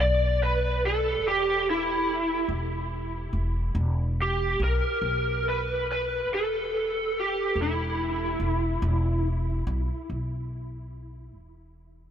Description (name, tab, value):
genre	slow blues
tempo	47 BPM (dotted quarters)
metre	12/8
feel	straight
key	E minor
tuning	A4 = 440 Hz
part	lead guitar through a small cranked amp	melody	0.0-9.2 s	E4 to D5	-26 LUFS	right 1 dB	overdrive, ensemble chorus
part	upright bass	bass	0.0-12.1 s	E1 to B1	-28 LUFS	equal	none
room	moderate huge ambient reverb, RT60 5.0 s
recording	dreamy mix soaked in reverb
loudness	-24 LUFS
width	side -9 dB against mid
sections	0.0-2.5 A section; 2.5-12.1 B section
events	lead electric guitar solo 0.0-2.5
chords	0.0 E5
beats	1.22 | 2.48 3.75 5.02 6.28 | 7.55 8.82 10.09 11.36